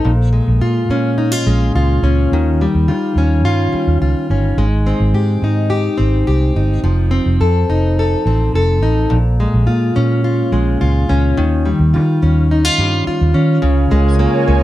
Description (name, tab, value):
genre	indie pop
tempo	106 BPM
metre	4/4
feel	straight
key	unclear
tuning	A4 = 441 Hz
part	fingerpicked plugged-in steel-string acoustic guitar	accompaniment	0.0-14.6 s	Bb2 to A4	-16 LUFS	left 1 dB	wide subtle chorus, vibrato effect
part	vintage muted fingered electric bass	bass	0.1-14.6 s	F1 to Eb3	-14 LUFS	equal	none
part	ethereal airy pad	sustained chords	13.8-14.6 s	F4 to Ab5	-18 LUFS	right 4 dB	ensemble chorus, built-in reverb
room	light reverb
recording	none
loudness	-12 LUFS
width	side -14 dB against mid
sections	0.0-13.6 A section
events	none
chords	0.1 Bbm7; 2.3 Eb9; 4.6 Abmaj7; 6.8 F7; 9.1 Bbm7; 11.4 Eb9; 13.6 Db6